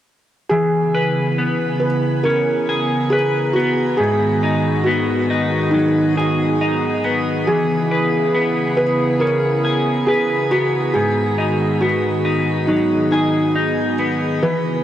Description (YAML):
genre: dream pop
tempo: 69 BPM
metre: 4/4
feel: straight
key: G# minor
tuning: A4 = 440 Hz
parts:
  - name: felt-muted upright piano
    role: melody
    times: 0.5-14.8 s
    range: D#4 to B4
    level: -20 LUFS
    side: right 1 dB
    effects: tape echo
  - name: hollow soft pad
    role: sustained chords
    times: 0.5-14.8 s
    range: C#3 to G#4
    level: -21 LUFS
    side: right 1 dB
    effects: chorus
  - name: clean electric guitar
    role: arpeggios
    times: 0.5-14.8 s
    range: G#2 to B4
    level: -20 LUFS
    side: left 2 dB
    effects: analog chorus, tape echo
room: moderate shimmer reverb, RT60 5.9 s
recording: dry, gritty hardware recording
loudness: -15 LUFS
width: side -11 dB against mid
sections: 0.5-14.8 A section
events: none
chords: 0.5 E6; 4.0 G#m7; 7.5 E6; 10.9 G#m7